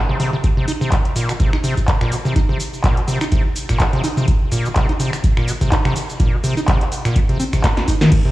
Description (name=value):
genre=acid house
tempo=125 BPM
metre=4/4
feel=swing 56% on 16ths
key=unclear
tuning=A4 = 440 Hz
part: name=acid bass, square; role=riff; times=0.1-8.3 s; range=Bb2 to Eb4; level=-20 LUFS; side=equal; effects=overdrive, tape echo
part: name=electro analog drum machine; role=drums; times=0.2-8.2 s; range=crash cymbal, finger snaps, handclaps, hi-hat, shaker, snare drum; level=-24 LUFS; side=equal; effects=none
part: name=electronic kick drum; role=drums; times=0.4-8.2 s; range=none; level=-17 LUFS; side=equal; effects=none
room=light reverb, digital ambience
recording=played on a big sound system in a bare room, large studio reverb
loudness=-15 LUFS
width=side -16 dB against mid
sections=0.0-8.1 A section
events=drum fill 7.6-8.1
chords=none